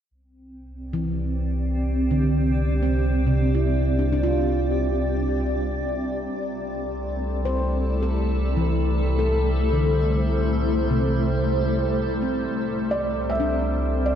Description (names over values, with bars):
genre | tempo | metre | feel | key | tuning
ambient | 77 BPM | 4/4 | straight | C major | A4 = 440 Hz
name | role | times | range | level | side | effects
granular cloud pad | sustained chords | 0.8-14.2 s | A3 to D5 | -26 LUFS | left 1 dB | built-in reverb
warm sub bass | bass | 0.1-14.2 s | C2 | -25 LUFS | equal | none
overtone-sweeping drone | drone | 4.1-14.2 s | C3 to G3 | -34 LUFS | left 1 dB | chorus, built-in reverb
handpan | arpeggios | 0.9-14.2 s | C3 to C5 | -27 LUFS | right 1 dB | tape echo
felt-muted upright piano | melody | 12.9-14.2 s | D5 to E5 | -25 LUFS | right 2 dB | none
room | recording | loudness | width
wet lush hall reverb, RT60 2.7 s | cassette tape | -21 LUFS | side -9 dB against mid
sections
0.1-14.2 A section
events
fade-in on synth drone 0.1-14.2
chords
0.1 Csus24; 6.3 Csus2